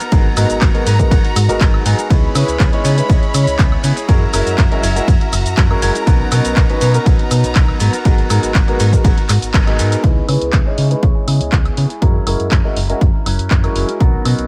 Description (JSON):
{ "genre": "filtered disco house", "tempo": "121 BPM", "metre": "4/4", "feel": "straight", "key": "C# dorian", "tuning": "A4 = 440 Hz", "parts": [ { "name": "warm studio violin section", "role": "sustained chords", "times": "0.0-10.0 s", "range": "B3 to B5", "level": "-27 LUFS", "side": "equal", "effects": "sidechain pumping, low-pass filter" }, { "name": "electric guitar with an envelope filter", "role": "riff", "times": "0.0-14.5 s", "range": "F#3 to A#4", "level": "-27 LUFS", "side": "equal", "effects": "sidechain pumping, low-pass filter" }, { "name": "punchy analog drum machine", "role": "drums", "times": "0.0-14.5 s", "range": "handclaps, hi-hat, ride cymbal, shaker, woodblock", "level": "-25 LUFS", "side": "equal", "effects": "sidechain pumping on hats, sidechain pumping on perc, sidechain pumping on cymbals" }, { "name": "warm grand piano", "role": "accompaniment", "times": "0.1-14.5 s", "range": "G#3 to D#5", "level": "-23 LUFS", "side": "equal", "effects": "phaser, vintage 12-bit sampler grit, sidechain pumping, low-pass filter" }, { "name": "slap-like FM bass", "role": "bass", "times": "0.1-14.5 s", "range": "F#1 to C#3", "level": "-19 LUFS", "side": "equal", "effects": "sidechain pumping, low-pass filter" }, { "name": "electronic kick drum", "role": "drums", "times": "0.1-14.1 s", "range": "none", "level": "-16 LUFS", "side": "equal", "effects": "none" } ], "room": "little or no reverb", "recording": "none", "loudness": "-14 LUFS", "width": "mono", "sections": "0.0-10.0 A section; 10.0-14.5 B section", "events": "drop 0.0-10.0; band accent 9.5", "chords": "0.0 G#m9; 2.1 C#m7; 4.1 F#7; 6.1 Bmaj7; 7.8 G#m9; 10.0 C#m7; 12.0 F#7" }